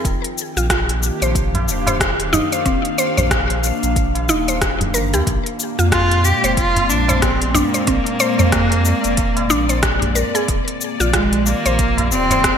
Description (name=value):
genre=organic downtempo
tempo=92 BPM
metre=4/4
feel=swing 59% on 16ths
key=unclear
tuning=A4 = 440 Hz
part: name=airy breathy pad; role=sustained chords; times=0.0-12.6 s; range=Bb2 to G5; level=-23 LUFS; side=left 1 dB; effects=chorus, sidechain pumping
part: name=mallet-like synth pluck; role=arpeggios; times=0.0-12.4 s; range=C4 to C5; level=-22 LUFS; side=equal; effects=chorus, ping-pong delay
part: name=warm sub bass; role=bass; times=0.0-12.6 s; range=Eb1 to F2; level=-20 LUFS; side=equal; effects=sidechain pumping
part: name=electronic kick drum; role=drums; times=0.0-12.6 s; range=none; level=-22 LUFS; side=equal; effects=none
part: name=quartz singing bowl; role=texture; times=0.0-12.6 s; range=F4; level=-42 LUFS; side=right 10 dB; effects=none
part: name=afro-pop drum kit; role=drums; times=0.1-12.6 s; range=cabasa, hi-hat, rim click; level=-22 LUFS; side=left 2 dB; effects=gated reverb
part: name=tabla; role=percussion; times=0.4-12.4 s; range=none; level=-26 LUFS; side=right 1 dB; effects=none
part: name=rich cello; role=melody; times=5.9-12.6 s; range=Ab3 to G4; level=-19 LUFS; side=right 1 dB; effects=ping-pong delay
room=moderate lush hall reverb, RT60 1.5 s, digital ambience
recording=bright 1980s-style digital production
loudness=-15 LUFS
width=side -8 dB against mid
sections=0.0-12.6 A section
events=none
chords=0.1 Ebmaj7; 5.3 Bb7; 10.5 Ebmaj7